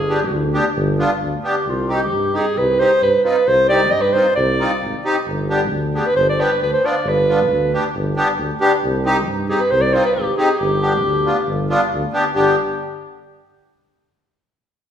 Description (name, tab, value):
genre	klezmer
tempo	135 BPM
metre	4/4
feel	straight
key	G phrygian dominant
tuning	A4 = 441 Hz
part	warm clarinet	melody	0.0-12.6 s	F4 to Eb5	-17 LUFS	right 1 dB	none
part	breathy tuba	bass	0.0-12.6 s	G1 to G2	-22 LUFS	equal	none
part	accordion	accompaniment	0.1-12.6 s	B3 to G4	-20 LUFS	left 1 dB	light tremolo tuning
room	wet large studio reverb, RT60 1.5 s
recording	band playing live in one room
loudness	-15 LUFS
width	side -9 dB against mid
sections	0.0-12.4 A section; 12.4-14.1 B section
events	speeding up 0.0-14.1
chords	0.0 G; 1.7 Cm; 5.3 G; 8.8 Cm; 10.6 G